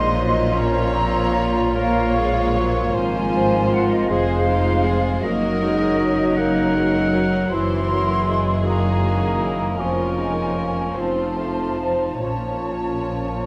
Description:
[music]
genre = classical, slow romantic movement for symphony orchestra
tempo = 46-55 BPM (dotted quarters)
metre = 12/8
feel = rubato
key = Bb minor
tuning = A4 = 440 Hz
[part]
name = warm chamber violin section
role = melody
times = 0.0-13.4 s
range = Ab4 to Eb5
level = -32 LUFS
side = equal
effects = none
[part]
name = dark chamber violin section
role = second line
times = 0.0-13.5 s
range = Db4 to Ab4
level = -34 LUFS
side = equal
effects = none
[part]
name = mellow cor anglais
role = second line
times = 0.0-13.5 s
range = Bb4 to Gb5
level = -32 LUFS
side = equal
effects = none
[part]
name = mellow flute section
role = second line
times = 0.0-13.5 s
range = Eb5 to C6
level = -29 LUFS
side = equal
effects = none
[part]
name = warm clarinet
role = second line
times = 0.0-13.5 s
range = Eb4 to Ab4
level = -32 LUFS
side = equal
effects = none
[part]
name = rich chamber viola section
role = accompaniment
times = 0.0-13.5 s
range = Eb3 to Bb3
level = -30 LUFS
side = equal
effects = none
[part]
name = warm bassoon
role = accompaniment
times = 0.0-13.5 s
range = Fb3 to Eb4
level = -31 LUFS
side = equal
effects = none
[part]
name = mellow French horn section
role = sustained chords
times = 0.0-13.5 s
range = F3 to Fb4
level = -29 LUFS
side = equal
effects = none
[part]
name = concert harp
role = arpeggios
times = 0.0-13.5 s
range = F2 to F5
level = -33 LUFS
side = equal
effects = none
[part]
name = dark studio cello section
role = bass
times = 0.0-13.5 s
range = F2 to Bb2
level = -28 LUFS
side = equal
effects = none
[part]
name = rich chamber double bass section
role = bass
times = 0.0-13.5 s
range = F1 to Bb1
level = -30 LUFS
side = equal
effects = none
[part]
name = timpani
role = percussion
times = 12.2-13.5 s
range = none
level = barely audible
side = none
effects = none
[sound]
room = wet concert hall reverb, RT60 2.0 s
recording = none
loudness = -20 LUFS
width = mono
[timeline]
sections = 0.0-13.5 A section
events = none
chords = 0.0 Bbm; 2.9 Fm/Ab; 5.2 Ebm/Gb; 7.5 Gb7; 9.8 Bbm/F; 11.0 F7; 12.2 Bbm

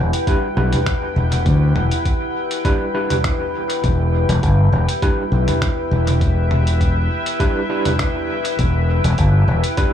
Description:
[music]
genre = ambient dub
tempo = 101 BPM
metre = 4/4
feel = swing 53% on 16ths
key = E minor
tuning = A4 = 441 Hz
[part]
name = deep dark ambient pad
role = sustained chords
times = 0.0-9.9 s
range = E4 to G5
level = -22 LUFS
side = left 1 dB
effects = chorus, built-in reverb
[part]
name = growling fingered electric bass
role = bass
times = 0.0-9.6 s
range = E1 to D2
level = -15 LUFS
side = left 1 dB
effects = overdrive
[part]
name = lo-fi sampler-style drum kit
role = drums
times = 0.1-9.9 s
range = finger snaps, hi-hat, toms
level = -25 LUFS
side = equal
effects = overdrive, dub echo
[part]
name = overdriven tine electric piano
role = stabs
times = 0.3-9.9 s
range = G3 to B4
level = -25 LUFS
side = right 2 dB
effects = medium tremolo, dub echo
[part]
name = electronic kick drum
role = drums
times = 0.3-9.9 s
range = none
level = -19 LUFS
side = equal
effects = overdrive
[sound]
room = digital ambience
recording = echo-heavy mix, studio reverb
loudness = -15 LUFS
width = side -9 dB against mid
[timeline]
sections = 0.0-9.9 A section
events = none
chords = 0.0 Em7

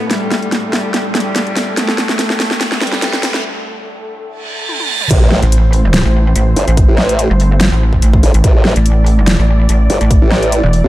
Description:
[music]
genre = heavy wobble dubstep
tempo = 144 BPM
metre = 4/4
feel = swing 53% on 16ths, half-time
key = A minor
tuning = A4 = 440 Hz
[part]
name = rich cello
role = melody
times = 0.0-3.4 s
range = G3 to A3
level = -22 LUFS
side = left 1 dB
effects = digital delay
[part]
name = dark symphonic string section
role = sustained chords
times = 0.0-10.9 s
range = A2 to D5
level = -23 LUFS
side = right 1 dB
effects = sidechain pumping, low-pass filter
[part]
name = riser, reverse cymbal and impact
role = sound effects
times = 0.2-6.8 s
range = none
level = -22 LUFS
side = right 2 dB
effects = none
[part]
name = granular cloud pad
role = texture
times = 0.0-3.4 s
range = A3 to G5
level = -27 LUFS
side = equal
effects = built-in reverb, sidechain pumping
[part]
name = dubstep drum kit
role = drums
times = 0.1-10.8 s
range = crash cymbal, hi-hat, snare drum, toms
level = -17 LUFS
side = equal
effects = overdrive, studio reverb
[part]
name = formant-sweep wobble bass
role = bass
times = 5.1-10.9 s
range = G1 to B1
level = -13 LUFS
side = equal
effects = chorus, overdrive
[part]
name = electronic kick drum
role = drums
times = 5.1-10.2 s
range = none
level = -10 LUFS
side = equal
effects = studio reverb
[part]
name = pulsing pluck wobble bass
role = bass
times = 5.4-10.8 s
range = E1 to A1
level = -10 LUFS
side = equal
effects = chorus, overdrive
[sound]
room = light reverb, digital ambience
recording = dark, warm production, high-pass filter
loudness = -10 LUFS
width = side -15 dB against mid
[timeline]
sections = 0.0-5.1 A section; 5.1-10.9 B section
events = build-up 0.0-5.1; drum fill 0.0-3.4, 4.7-5.1; riser 0.2-3.4; filter sweep 0.0-5.1; break 3.4-5.1; reverse cymbal 4.4-5.1; drop 5.1-10.9; impact 5.1-6.8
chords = 0.0 A5; 5.1 Am

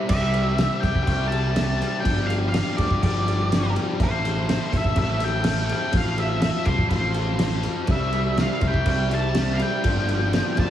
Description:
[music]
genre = indie rock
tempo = 123 BPM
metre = 4/4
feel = straight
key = C major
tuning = A4 = 440 Hz
[part]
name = biting overdriven guitar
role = riff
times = 0.0-10.7 s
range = F3 to A4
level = -27 LUFS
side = left 4 dB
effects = slapback echo
[part]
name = overdriven semi-hollow guitar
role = riff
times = 0.0-0.1, 7.9-10.7 s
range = G2 to F4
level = -31 LUFS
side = right 7 dB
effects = ensemble chorus, slapback echo
[part]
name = octave-fuzz lead guitar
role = melody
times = 0.1-10.7 s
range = C5 to A5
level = -27 LUFS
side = equal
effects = distortion, slapback echo
[part]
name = growling fingered electric bass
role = bass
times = 0.1-10.7 s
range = G1 to D2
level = -24 LUFS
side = right 1 dB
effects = overdrive
[part]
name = cloth-damped thuddy drum kit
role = drums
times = 0.1-10.7 s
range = crash cymbal, kick drum, snare drum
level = -25 LUFS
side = equal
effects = none
[sound]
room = light reverb, studio reverb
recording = small room ambience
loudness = -20 LUFS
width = side -11 dB against mid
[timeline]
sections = 0.1-10.7 A section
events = none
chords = 0.1 C; 2.0 G7; 4.0 Am7; 5.9 F/A; 7.9 C; 9.8 G7

